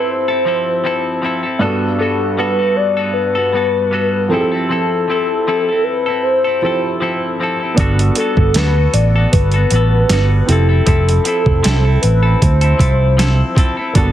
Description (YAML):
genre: indie pop, bedroom pop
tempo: 78 BPM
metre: 4/4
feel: swing 55% on 16ths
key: unclear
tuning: A4 = 440 Hz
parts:
  - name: warm velvety synth lead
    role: melody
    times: 0.0-13.6 s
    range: A4 to D5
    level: -18 LUFS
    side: left 2 dB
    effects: wide subtle chorus, slapback echo
  - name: semi-hollow electric guitar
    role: accompaniment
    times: 0.0-14.1 s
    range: F3 to A4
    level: -20 LUFS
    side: left 2 dB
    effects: wide subtle chorus, warbly pitch drift
  - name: warm upright piano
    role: accompaniment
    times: 0.0-14.1 s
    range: G2 to A4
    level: -22 LUFS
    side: right 2 dB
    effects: cassette tape
  - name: fingered electric bass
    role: bass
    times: 7.8-14.1 s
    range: F1 to D2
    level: -13 LUFS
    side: right 1 dB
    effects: none
  - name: boom bap sampler-style drum kit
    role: drums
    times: 7.8-14.1 s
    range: hi-hat, kick drum, snare drum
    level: -16 LUFS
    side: right 1 dB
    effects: overdrive
room: light reverb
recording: heavily compressed radio sound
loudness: -12 LUFS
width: side -11 dB against mid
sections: 0.0-14.1 A section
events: none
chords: 0.0 Fmaj7; 1.6 Gmaj9; 4.3 Fmaj7; 7.8 Gmaj9; 10.5 Fmaj7